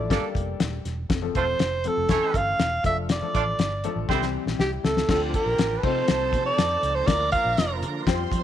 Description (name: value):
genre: uptempo 1960s-style soul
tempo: 120 BPM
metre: 4/4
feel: straight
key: D minor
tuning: A4 = 439 Hz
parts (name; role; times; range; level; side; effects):
- breathy alto saxophone; melody; 0.0-7.8 s; G4 to F5; -25 LUFS; right 2 dB; none
- warm baby grand piano; accompaniment; 0.0-8.4 s; D3 to C5; -31 LUFS; left 10 dB; none
- vintage muted fingered electric bass; bass; 0.0-8.4 s; Eb1 to F3; -30 LUFS; right 1 dB; none
- clear horn section; second line; 0.1-4.2 s; G3 to D5; -30 LUFS; right 11 dB; none
- cloth-damped thuddy drum kit; drums; 0.1-8.4 s; crash cymbal, hi-hat, kick drum, snare drum; -26 LUFS; left 2 dB; none
- clear studio violin section; second line; 5.1-8.4 s; G4 to C6; -34 LUFS; right 12 dB; none
- bright tonewheel organ; sustained chords; 5.1-8.4 s; F3 to F4; -34 LUFS; equal; chorus vibrato, fast rotary speaker
room: light reverb, small room ambience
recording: 1960s-style stereo with parts hard left and right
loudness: -22 LUFS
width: side -10 dB against mid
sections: 0.0-5.1 A section; 5.1-8.4 B section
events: drum fill 4.1-5.1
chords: 0.1 Gmadd9; 1.1 F; 2.1 A/E; 2.8 Dm/F; 4.1 C; 5.1 Dm; 5.8 F7/C; 7.1 Bb